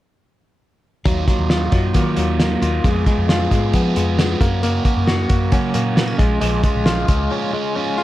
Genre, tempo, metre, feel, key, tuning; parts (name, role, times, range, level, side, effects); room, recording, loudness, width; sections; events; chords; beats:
jangly indie pop; 134 BPM; 4/4; straight; Eb minor; A4 = 443 Hz
crunchy overdriven guitar; accompaniment; 1.1-8.0 s; Gb2 to Ab4; -23 LUFS; right 6 dB; phaser, plate reverb
direct-recorded clean electric guitar; arpeggios; 1.1-8.0 s; Gb3 to Gb4; -22 LUFS; left 4 dB; tremolo, slapback echo, plate reverb
vintage muted fingered electric bass; bass; 1.1-7.3 s; Bb1 to Gb3; -21 LUFS; equal
cloth-damped thuddy drum kit; drums; 1.1-7.2 s; hi-hat, kick drum, snare drum; -18 LUFS; equal
light reverb; dark, warm production; -15 LUFS; side -15 dB against mid
1.1-8.0 A section
break 7.3-8.0
1.1 Ebmadd9; 2.8 Fdim; 4.4 Gb; 6.2 Bbm7
| 1.06 1.50 1.95 2.40 | 2.84 3.29 3.74 4.18 | 4.63 5.08 5.52 5.97 | 6.42 6.86 7.31 7.76